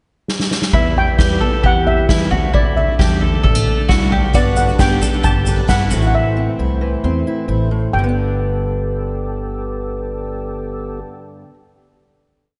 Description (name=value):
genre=indie folk with a building arrangement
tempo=133 BPM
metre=4/4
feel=straight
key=G major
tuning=A4 = 438 Hz
part: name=soft-mallet drum kit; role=drums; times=0.3-6.0 s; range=kick drum, snare drum, toms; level=-18 LUFS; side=equal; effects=none
part: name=steel pan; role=melody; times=0.7-11.0 s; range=D5 to A5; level=-24 LUFS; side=equal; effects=diffuse ambient delay
part: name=fingerpicked acoustic archtop guitar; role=accompaniment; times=0.7-11.6 s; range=D2 to E4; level=-26 LUFS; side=equal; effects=analog chorus
part: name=mandolin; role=arpeggios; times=0.7-6.1 s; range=E4 to A4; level=-25 LUFS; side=equal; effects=diffuse ambient delay
part: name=upright bass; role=bass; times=0.7-11.0 s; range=G1 to E2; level=-23 LUFS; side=equal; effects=none
part: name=picked twelve-string acoustic guitar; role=accompaniment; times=4.3-6.2 s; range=E3 to A4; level=-31 LUFS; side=equal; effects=none
part: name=tube shaker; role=percussion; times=4.3-6.1 s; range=none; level=-34 LUFS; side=equal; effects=none
part: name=mellow tonewheel organ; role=sustained chords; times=4.4-11.0 s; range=G3 to C5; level=-29 LUFS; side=equal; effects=slow rotary speaker, overdrive, chorus vibrato
room=moderate lush hall reverb, RT60 1.9 s, small room ambience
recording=dreamy mix soaked in reverb, nothing above 10.8 kHz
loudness=-17 LUFS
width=mono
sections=0.0-0.7 pickup bar; 0.7-7.9 pre-chorus; 7.9-11.5 final chord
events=drum fill 0.3-0.7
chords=0.0 N.C.; 0.7 Em; 2.3 Dsus2; 4.3 Gadd9; 5.9 Am; 7.9 Gadd9